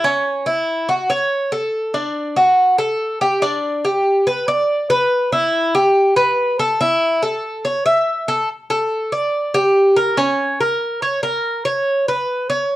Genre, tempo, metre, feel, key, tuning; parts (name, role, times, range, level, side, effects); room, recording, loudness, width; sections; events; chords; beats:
latin; 142 BPM; 4/4; straight; A4 = 440 Hz
Cuban tres; solo; 0.0-12.8 s; C#4 to E5; -15 LUFS; equal
moderate studio reverb, RT60 0.7 s; worn, warbling old tape, cassette tape, warbly pitch drift; -15 LUFS; side -15 dB against mid
0.0-8.5 A section; 8.5-12.8 B section
| 0.04 0.46 0.89 1.31 | 1.73 2.15 2.58 3.00 | 3.42 3.85 4.27 4.69 | 5.11 5.53 5.96 6.38 | 6.80 7.22 7.64 8.06 | 8.49 8.91 9.33 9.75 | 10.17 10.60 11.02 11.44 | 11.86 12.28 12.71